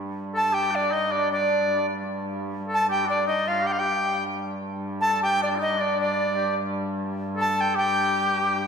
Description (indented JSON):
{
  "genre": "medieval dance",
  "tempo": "102 BPM (dotted quarters)",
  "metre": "6/8",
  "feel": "straight",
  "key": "unclear",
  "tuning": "A4 = 440 Hz",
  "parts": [
    { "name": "dark hurdy-gurdy", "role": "drone", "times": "0.0-8.7 s", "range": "G2", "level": "-31 LUFS", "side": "equal", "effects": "none" },
    { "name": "clear shawm", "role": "second line", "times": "0.3-8.7 s", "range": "D4 to A4", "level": "-28 LUFS", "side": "left 2 dB", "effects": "none" },
    { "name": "bright reedy tenor recorder", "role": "melody", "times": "0.4-8.7 s", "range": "D5 to A5", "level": "-24 LUFS", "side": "equal", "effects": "none" }
  ],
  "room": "wet concert hall reverb, RT60 2.1 s",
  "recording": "recorded in a church or concert hall",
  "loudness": "-22 LUFS",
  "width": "side -6 dB against mid",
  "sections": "0.0-8.7 A section",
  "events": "none",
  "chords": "none"
}